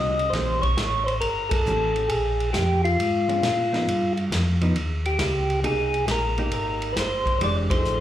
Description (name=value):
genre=soul jazz organ trio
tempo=136 BPM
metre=4/4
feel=swing 68% on 8ths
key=unclear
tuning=A4 = 437 Hz
part: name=percussive tonewheel organ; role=melody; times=0.0-8.0 s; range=F4 to Eb5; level=-24 LUFS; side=equal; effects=slow rotary speaker, slapback echo
part: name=hollow-body jazz guitar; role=accompaniment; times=0.0-8.0 s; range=Eb3 to G#4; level=-30 LUFS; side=right 1 dB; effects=slapback echo
part: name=mellow tonewheel organ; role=bass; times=0.0-8.0 s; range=F1 to Bb2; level=-26 LUFS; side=equal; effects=chorus vibrato, slow rotary speaker
part: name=vintage drum kit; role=drums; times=0.2-8.0 s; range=hi-hat, kick drum, ride cymbal, snare drum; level=-29 LUFS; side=equal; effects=none
room=light reverb, studio ambience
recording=live gig heard through the venue's PA, club reverb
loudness=-21 LUFS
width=side -11 dB against mid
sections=0.0-8.0 A section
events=band accent 1.4, 7.6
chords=0.3 Edim7; 2.1 Bb7(no3); 3.9 G7(#5, no3); 5.6 Cm7; 7.4 F7#9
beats=| 0.33 0.78 1.22 1.66 | 2.10 2.54 2.99 3.43 | 3.87 4.31 4.75 5.20 | 5.64 6.08 6.52 6.96 | 7.40 7.84